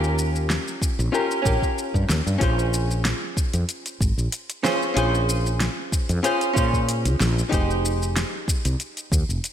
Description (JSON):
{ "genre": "sunset chillout", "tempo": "94 BPM", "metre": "4/4", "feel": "swing 53% on 16ths", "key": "Bb dorian", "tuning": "A4 = 436 Hz", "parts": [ { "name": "archtop guitar, miked and amplified", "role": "accompaniment", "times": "0.0-9.5 s", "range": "Db4 to C5", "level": "-25 LUFS", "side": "equal", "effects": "auto-pan, low-pass filter, tape echo, slapback echo" }, { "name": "woody fretless electric bass", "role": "bass", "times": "0.0-9.4 s", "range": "F1 to Bb2", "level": "-23 LUFS", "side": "equal", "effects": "none" }, { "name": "deep house drum kit", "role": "drums", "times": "0.0-9.5 s", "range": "hi-hat, shaker, snare drum", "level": "-28 LUFS", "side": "equal", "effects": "none" }, { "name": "electronic kick drum", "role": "drums", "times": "0.8-9.3 s", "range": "none", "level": "-24 LUFS", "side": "equal", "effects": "none" } ], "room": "moderate lush hall reverb, RT60 1.8 s, digital ambience", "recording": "big arena sound", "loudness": "-20 LUFS", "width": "side -10 dB against mid", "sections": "0.0-9.5 A section", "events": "none", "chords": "0.0 Eb7; 2.4 Bbm7; 7.5 Fm7", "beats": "0.50 1.13 1.77 | 2.41 3.05 3.69 4.33 | 4.96 5.60 6.24 6.88 | 7.52 8.15 8.79 9.43" }